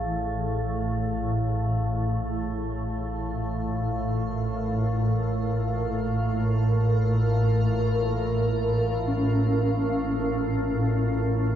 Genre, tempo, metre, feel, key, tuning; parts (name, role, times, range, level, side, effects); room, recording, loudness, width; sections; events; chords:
dark ambient drone; free time; A4 = 442 Hz
granular cloud pad; sustained chords; 0.6-11.6 s; A2 to F5; -28 LUFS; equal; built-in reverb, shimmer reverb
gamelan-type bronze metallophone; arpeggios; 0.0-11.6 s; E3 to G#4; -31 LUFS; left 1 dB; tape echo, shimmer reverb
organ-like drone; drone; 0.0-11.6 s; A1 to A2; -26 LUFS; equal; ensemble chorus, built-in reverb
bronze singing bowl; texture; 0.0-11.6 s; F5; -38 LUFS; right 1 dB; shimmer reverb
wet huge ambient reverb, RT60 7.6 s; in a vast, echoing space; -23 LUFS; side -10 dB against mid
0.0-11.6 A section
0.0 Bb5/A